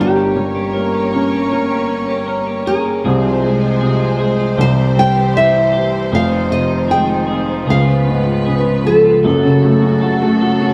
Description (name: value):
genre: pop ballad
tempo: 78 BPM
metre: 4/4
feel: straight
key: F minor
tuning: A4 = 439 Hz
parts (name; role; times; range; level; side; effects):
- nylon-string guitar; melody; 0.0-10.7 s; G4 to G5; -19 LUFS; equal; none
- felt-muted upright piano; accompaniment; 0.0-10.7 s; F1 to G4; -18 LUFS; equal; none
- warm studio string section; sustained chords; 0.0-10.7 s; C3 to Db5; -23 LUFS; equal; none
- twelve-string electric guitar; arpeggios; 0.0-10.7 s; C3 to Bb4; -24 LUFS; equal; none
room: wet stone room reverb, RT60 1.3 s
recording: band playing live in one room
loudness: -15 LUFS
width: mono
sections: 0.0-9.3 A section; 9.3-10.7 A section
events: none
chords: 0.0 Gdim; 3.0 Fm/C; 4.6 C; 6.1 Fm7; 7.7 Db7; 9.3 F#m